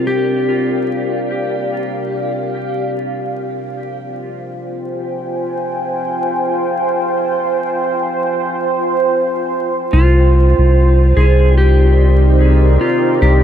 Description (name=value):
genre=ambient dub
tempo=73 BPM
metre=4/4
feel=swing 60% on 16ths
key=C minor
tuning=A4 = 439 Hz
part: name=clean lap steel guitar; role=melody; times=0.0-2.9, 9.9-13.4 s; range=F4 to Ab4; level=-19 LUFS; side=left 1 dB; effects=dub echo
part: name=deep dark ambient pad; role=sustained chords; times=0.0-13.4 s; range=C4 to Ab5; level=-17 LUFS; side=right 1 dB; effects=chorus, built-in reverb
part: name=round analog bass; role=bass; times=9.9-13.4 s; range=C2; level=-10 LUFS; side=equal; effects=none
room=moderate huge ambient reverb, RT60 7.2 s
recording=vinyl crackle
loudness=-13 LUFS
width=side -10 dB against mid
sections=0.0-9.9 A section; 9.9-13.4 B section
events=none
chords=0.0 C9sus4; 3.4 Fmadd9; 9.9 Cm11